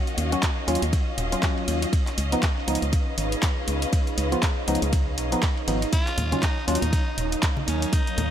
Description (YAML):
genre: deep house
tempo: 120 BPM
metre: 4/4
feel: swing 58% on 16ths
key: Eb minor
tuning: A4 = 440 Hz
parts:
  - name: deep dark ambient pad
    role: sustained chords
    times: 0.0-8.3 s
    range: Gb3 to F5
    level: -34 LUFS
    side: right 3 dB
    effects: chorus, built-in reverb, sidechain pumping
  - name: warm studio string section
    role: texture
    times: 0.0-8.3 s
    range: Db4 to F5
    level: -32 LUFS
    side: left 1 dB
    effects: sidechain pumping
  - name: punchy analog drum machine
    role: drums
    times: 0.1-8.3 s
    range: handclaps, hi-hat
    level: -30 LUFS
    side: equal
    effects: none
  - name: organ-like FM bass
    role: bass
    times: 0.2-8.3 s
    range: Eb1 to Eb2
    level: -26 LUFS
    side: equal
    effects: sidechain pumping
  - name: dusty soul sampler-style drum kit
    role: drums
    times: 0.2-8.3 s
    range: ride cymbal, snare drum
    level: -40 LUFS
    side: right 3 dB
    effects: none
  - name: percussive organ stab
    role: stabs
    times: 0.3-6.8 s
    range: F3 to Gb4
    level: -28 LUFS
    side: equal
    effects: lush chorus, sidechain pumping, tape echo
  - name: electronic kick drum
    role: drums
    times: 0.4-8.0 s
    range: none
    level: -24 LUFS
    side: equal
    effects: none
  - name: raspy tenor saxophone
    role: melody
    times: 5.9-8.3 s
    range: Db4 to F4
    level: -31 LUFS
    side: equal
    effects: tape echo
  - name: congas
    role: percussion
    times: 6.2-8.3 s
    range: none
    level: -32 LUFS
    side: left 1 dB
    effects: none
room: light reverb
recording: none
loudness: -22 LUFS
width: side -10 dB against mid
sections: 0.0-8.3 A section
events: none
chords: 0.0 Ebm9; 1.9 Db9; 5.9 Ebm9